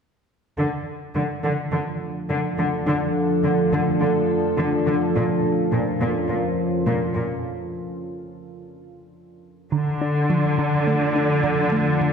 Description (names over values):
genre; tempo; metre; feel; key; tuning
cinematic; 105 BPM; 4/4; straight; D harmonic minor; A4 = 441 Hz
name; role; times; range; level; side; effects
deep dark ambient pad; sustained chords; 1.7-12.1 s; F3 to Bb4; -23 LUFS; equal; chorus, built-in reverb
rich symphonic cello section; bass; 0.6-12.1 s; Bb2 to D3; -23 LUFS; equal; none
thumb-piano-like synth pluck; arpeggios; 9.7-12.1 s; D3 to D4; -23 LUFS; right 1 dB; chorus, ping-pong delay
room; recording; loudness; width
wet scoring stage reverb, RT60 1.6 s; heard from further back in the room; -20 LUFS; side -6 dB against mid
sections
0.6-9.7 A section; 9.7-12.1 B section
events
break 7.4-9.7; build-up 9.7-12.1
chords
0.6 Dm; 5.2 Bbm; 9.7 Dm